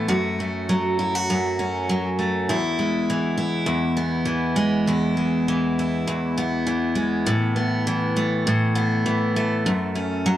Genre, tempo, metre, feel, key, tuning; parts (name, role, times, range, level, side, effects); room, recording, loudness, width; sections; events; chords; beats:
pop; 100 BPM; 4/4; swing 55% on 16ths; E major; A4 = 442 Hz
picked steel-string acoustic guitar; solo; 0.0-10.4 s; E2 to F#4; -20 LUFS; equal; tape echo
little or no reverb; worn, warbling old tape, cassette tape, warbly pitch drift; -20 LUFS; side -12 dB against mid
0.0-7.3 A section; 7.3-10.4 B section
0.1 F#m; 2.5 E; 7.3 Asus2; 9.7 F#m
| 0.08 0.68 1.28 1.88 | 2.48 3.08 3.67 4.28 | 4.87 5.47 6.07 6.67 | 7.27 7.87 8.46 9.06 | 9.66 10.25